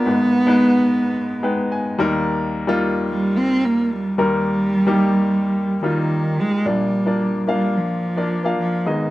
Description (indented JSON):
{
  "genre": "pop",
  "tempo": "109 BPM",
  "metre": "4/4",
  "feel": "straight",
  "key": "Eb major",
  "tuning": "A4 = 441 Hz",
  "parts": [
    { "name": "dark cello", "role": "melody", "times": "0.0-9.1 s", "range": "Eb3 to C4", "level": "-18 LUFS", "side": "right 1 dB", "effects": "none" },
    { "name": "clear baby grand piano", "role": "accompaniment", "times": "0.0-9.1 s", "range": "Ab1 to Bb5", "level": "-21 LUFS", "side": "left 2 dB", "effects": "slapback echo" }
  ],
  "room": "little or no reverb",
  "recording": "recorded outdoors, with no room sound",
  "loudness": "-17 LUFS",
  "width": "side -16 dB against mid",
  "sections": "0.0-6.7 A section; 6.7-9.1 B section",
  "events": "grand piano fill 1.2-2.3",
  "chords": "0.1 Abm; 2.0 Eb; 6.7 Bb"
}